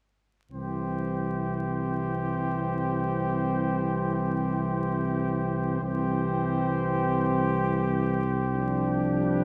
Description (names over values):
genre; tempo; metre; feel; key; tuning
classical, brass quintet; free time; none; none; C major; A4 = 438 Hz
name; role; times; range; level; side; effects
clear trumpet; melody; 0.5-9.4 s; B4 to C5; -39 LUFS; equal; none
bright trumpet; second line; 0.5-9.4 s; G4; -36 LUFS; equal; none
clear trombone; accompaniment; 0.5-9.4 s; E3 to F3; -34 LUFS; equal; none
warm French horn; accompaniment; 0.5-9.4 s; C4 to D4; -35 LUFS; equal; none
mellow tuba; bass; 0.5-9.4 s; C2; -31 LUFS; equal; none
room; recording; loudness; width
wet concert hall reverb, RT60 1.9 s; dark, warm production, vinyl crackle; -28 LUFS; mono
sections
0.5-9.4 A section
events
none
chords
0.5 C; 8.5 G7/C